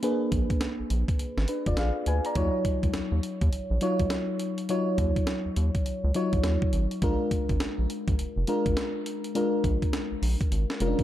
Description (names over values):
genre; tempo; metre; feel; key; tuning
R&B, new jack swing; 103 BPM; 4/4; swing 63% on 16ths; Eb minor; A4 = 445 Hz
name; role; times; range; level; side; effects
mellow FM electric piano; accompaniment; 0.0-11.0 s; Gb3 to Bb5; -28 LUFS; left 1 dB; chorus
breakbeat sampler-style drum kit; drums; 0.0-11.0 s; hi-hat, kick drum, snare drum; -30 LUFS; equal; none
round analog bass; bass; 0.3-11.0 s; F1 to Eb2; -27 LUFS; equal; none
room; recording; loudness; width
light reverb, digital ambience; dark, warm production; -25 LUFS; side -12 dB against mid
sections
0.0-11.0 A section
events
none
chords
0.0 Bb7b9; 2.4 Ebm9; 7.0 Bb7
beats
| 0.03 0.61 1.20 1.78 | 2.36 2.94 3.52 4.11 | 4.69 5.27 5.86 6.44 | 7.02 7.60 8.19 8.77 | 9.35 9.93 10.52